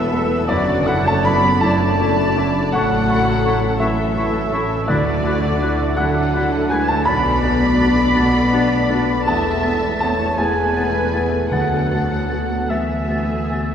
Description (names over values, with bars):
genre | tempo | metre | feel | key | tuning
cinematic, emotional film score for orchestra | 54 BPM (dotted quarters) | 6/8 | rubato | D lydian | A4 = 440 Hz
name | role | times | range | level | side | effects
muted chamber violin section | melody | 0.0-13.7 s | D5 to B5 | -29 LUFS | left 3 dB | none
muted studio violin section | second line | 0.0-13.7 s | F#4 to E5 | -27 LUFS | left 2 dB | none
warm oboe | second line | 0.0-13.7 s | D5 to B5 | -25 LUFS | right 2 dB | none
muted studio viola section | accompaniment | 0.0-13.7 s | A3 to B4 | -28 LUFS | right 1 dB | none
warm grand piano | accompaniment | 0.0-13.7 s | B1 to B5 | -22 LUFS | left 1 dB | none
mellow French horn section | sustained chords | 0.0-13.7 s | D3 to G#4 | -23 LUFS | left 2 dB | none
muted studio cello section | bass | 0.0-13.7 s | D2 to D3 | -24 LUFS | right 1 dB | none
muted studio double bass section | bass | 0.0-13.7 s | E1 to D2 | -25 LUFS | right 2 dB | none
bright clarinet | second line | 0.1-13.7 s | B3 to A4 | -30 LUFS | equal | none
mellow concert flute | second line | 0.1-13.6 s | B5 to A6 | -30 LUFS | left 1 dB | none
timpani | percussion | 4.9-5.9, 11.5-12.7 s | D3 | -28 LUFS | equal | none
room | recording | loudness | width
wet cathedral reverb, RT60 4.7 s | recorded in a church or concert hall | -15 LUFS | side -8 dB against mid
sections
0.0-13.7 A section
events
none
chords
0.5 Dadd9/F#; 2.7 A; 4.9 Dadd9; 7.1 Bm7; 9.3 Esus4; 11.5 Bm7/D